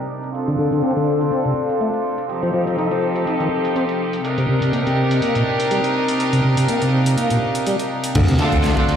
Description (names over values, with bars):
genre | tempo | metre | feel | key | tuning
breakbeat, breaks | 123 BPM | 4/4 | swing 53% on 16ths | C dorian | A4 = 442 Hz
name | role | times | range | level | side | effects
dark analog pad | sustained chords | 0.0-9.0 s | C4 to Eb6 | -24 LUFS | left 3 dB | chorus, phaser, sidechain pumping
bright chamber string section | stabs | 0.0-8.9 s | C3 to Bb4 | -21 LUFS | right 1 dB | vintage 12-bit sampler grit, digital delay
punchy analog drum machine | drums | 0.2-8.9 s | handclaps, hi-hat | -32 LUFS | left 1 dB | none
tonewheel organ | riff | 0.5-8.5 s | Bb2 to Eb4 | -20 LUFS | equal | overdrive, chorus vibrato, slow rotary speaker, digital delay
crunchy breakbeat drum kit | drums | 8.1-9.0 s | crash cymbal, kick drum, ride cymbal, snare drum | -22 LUFS | equal | none
modern bright picked electric bass | bass | 8.2-9.0 s | D2 | -19 LUFS | left 1 dB | none
sub drop | sound effects | 8.2-9.0 s | none | -20 LUFS | equal | none
room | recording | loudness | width
light reverb, small room ambience | played on a big sound system in a bare room, large studio reverb, low-pass filter | -17 LUFS | side -8 dB against mid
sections
0.0-8.1 A section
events
filter sweep on tonewheel organ 0.0-8.1; filter sweep 0.0-8.1; impact 8.1-9.0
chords
0.3 Dm7; 2.3 F7; 4.2 Cm7; 8.1 Dm7